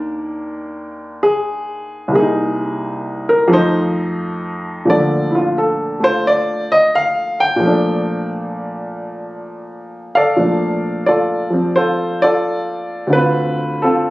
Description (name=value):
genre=solo jazz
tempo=87 BPM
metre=4/4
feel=swing 67% on 8ths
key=Bb major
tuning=A4 = 441 Hz
part: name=warm upright piano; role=solo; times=0.0-14.1 s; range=C2 to G5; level=-15 LUFS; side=equal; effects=none
room=moderate large studio reverb, RT60 1.2 s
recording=recorded on a phone in the room, club reverb, compression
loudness=-14 LUFS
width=side -19 dB against mid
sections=0.0-10.4 A section; 10.4-14.1 B section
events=upright piano solo 0.0-10.4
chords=0.0 Eb5; 2.1 Cm7; 3.5 F7; 4.9 Bbmaj7; 13.1 Dm7